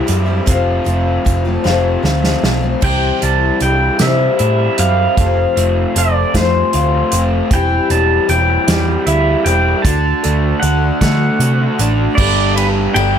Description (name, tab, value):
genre	folk rock and heartland rock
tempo	51 BPM (dotted quarters)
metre	6/8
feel	straight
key	unclear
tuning	A4 = 440 Hz
part	picked twelve-string acoustic guitar	accompaniment	0.0-13.2 s	F2 to A4	-19 LUFS	left 7 dB	none
part	raw garage guitar	riff	0.0-13.2 s	F2 to G4	-19 LUFS	right 1 dB	overdrive
part	hollow-body short-scale picked electric bass	bass	0.1-13.2 s	E1 to D3	-16 LUFS	right 1 dB	none
part	unplugged drum kit	drums	0.1-13.1 s	crash cymbal, hi-hat, kick drum, ride cymbal, snare drum	-18 LUFS	right 1 dB	none
part	pedal steel guitar	melody	2.8-13.2 s	B4 to A5	-18 LUFS	right 2 dB	none
room	small room ambience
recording	none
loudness	-12 LUFS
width	side -8 dB against mid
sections	0.0-2.8 A section; 2.8-12.2 B section; 12.2-13.2 C section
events	drum fill 1.7-2.8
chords	0.5 F; 2.8 C; 5.2 F; 7.5 C/E; 9.8 D; 12.2 Gadd9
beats	| 0.48 1.66 | 2.83 4.00 | 5.18 6.35 | 7.51 8.68 | 9.85 11.01 | 12.18